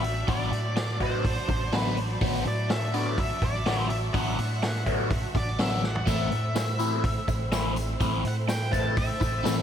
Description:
psychedelic rock; 124 BPM; 4/4; straight; A4 = 440 Hz
octave-fuzz lead guitar; melody; 0.0-9.6 s; B4 to A5; -32 LUFS; left 1 dB; distortion, diffuse ambient delay
bright studio string section; sustained chords; 0.0-9.6 s; F#3 to E5; -36 LUFS; right 3 dB
overdriven electric guitar; riff; 0.0-9.6 s; D3 to F#4; -30 LUFS; left 2 dB; phaser
picked electric bass; bass; 0.0-9.6 s; A1 to A2; -30 LUFS; equal
vintage drum kit; drums; 0.0-9.6 s; hi-hat, kick drum, snare drum, splash cymbal, toms; -30 LUFS; equal
tambourine; percussion; 6.1-9.6 s; -45 LUFS; left 6 dB
light reverb, studio reverb; -24 LUFS; side -9 dB against mid
0.0-9.6 A section
lead electric guitar solo 0.0-9.6; drum fill 5.8
0.0 Bm/A; 6.1 Am

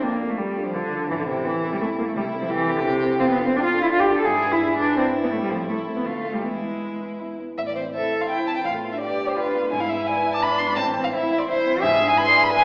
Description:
quick classical-period movement for piano trio; 169 BPM; 3/4; rubato; A minor from 3.2 s; A4 = 441 Hz
muted violin; melody; 0.0-12.6 s; D4 to C6; -24 LUFS; equal
muted cello; second line; 0.0-12.6 s; C3 to B4; -22 LUFS; equal
dark concert grand piano; accompaniment; 0.0-12.6 s; A1 to D6; -28 LUFS; equal
wet recital hall reverb, RT60 1.4 s; heard from further back in the room, small speaker sound; -20 LUFS; side -32 dB against mid
0.0-7.6 A section; 7.6-12.6 B section
0.0 Dm/F; 1.1 Am; 2.2 Am/C; 3.2 Dm/F; 4.3 E7/G#; 5.3 Am; 6.1 Dm; 6.4 E; 7.6 Am; 8.7 Bm7b5/A; 9.7 E7/G#; 10.8 Am; 11.8 E7/G#

